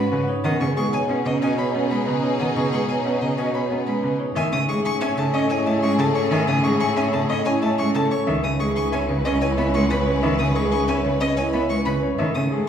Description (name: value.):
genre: classical, minimalist pattern music.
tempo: 184 BPM.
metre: 6/4.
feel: straight.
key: unclear.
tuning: A4 = 441 Hz.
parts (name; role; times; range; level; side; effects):
rich cello; accompaniment; 0.0-12.6 s; C#3 to C#4; -25 LUFS; equal; none.
rich symphonic string section; sustained chords; 0.0-12.7 s; C#4 to B4; -29 LUFS; left 4 dB; none.
rich violin; arpeggios; 0.0-12.5 s; D#5 to D#6; -29 LUFS; left 1 dB; none.
vibraphone with soft mallets; arpeggios; 0.0-12.7 s; C#4 to C#5; -25 LUFS; right 4 dB; none.
rich cello; bass; 0.0-12.7 s; C#2 to B2; -26 LUFS; right 2 dB; none.
clear grand piano; melody; 0.1-12.7 s; G#4 to G#5; -27 LUFS; left 6 dB; none.
room: wet recital hall reverb, RT60 1.7 s.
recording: heard from further back in the room.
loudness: -19 LUFS.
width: side -8 dB against mid.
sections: 0.0-4.4 A section; 4.4-12.7 B section.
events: none.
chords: 0.4 B6; 4.4 Amaj7; 8.3 C#m7; 12.2 Amaj7.